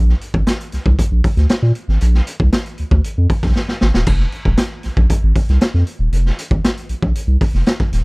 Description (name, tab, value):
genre	funk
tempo	117 BPM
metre	4/4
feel	straight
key	F dorian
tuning	A4 = 440 Hz
part	saturated sub bass	bass	0.0-8.0 s	Eb1 to Bb2	-14 LUFS	equal	none
part	raw garage drum kit	drums	0.1-8.0 s	crash cymbal, hi-hat, kick drum, snare drum	-17 LUFS	equal	none
room	little or no reverb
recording	dry, close 1970s-style studio recording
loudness	-14 LUFS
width	side -36 dB against mid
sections	0.0-4.1 A section; 4.1-8.0 B section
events	drum fill 3.6-4.1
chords	none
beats	0.47 0.99 1.50 | 2.02 2.53 3.05 3.56 | 4.07 4.59 5.10 5.61 | 6.13 6.64 7.15 7.66